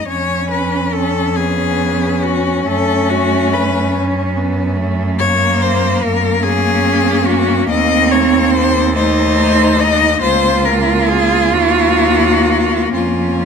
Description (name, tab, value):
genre	classical, lyrical piece for cello ensemble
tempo	40-49 BPM (dotted quarters)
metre	6/8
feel	rubato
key	F# minor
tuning	A4 = 440 Hz
part	rich cello	melody	0.0-13.4 s	F4 to Eb5	-16 LUFS	left 7 dB	none
part	rich cello	second line	0.0-13.4 s	A3 to F4	-18 LUFS	right 8 dB	none
part	warm cello	accompaniment	0.0-13.4 s	A3 to C#4	-19 LUFS	left 3 dB	none
part	rich cello	bass	0.0-13.4 s	Db2 to F#2	-18 LUFS	right 2 dB	none
room	moderate recital hall reverb, RT60 1.4 s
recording	close, detailed microphones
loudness	-12 LUFS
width	side -6 dB against mid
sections	0.0-13.4 A section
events	none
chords	0.1 C#7/E#; 2.7 F#m; 5.2 Gb; 7.7 Cm7/Eb; 9.0 Adim/Eb; 10.2 Bbm/Db; 11.5 Ebmadd9; 12.9 Bbm/F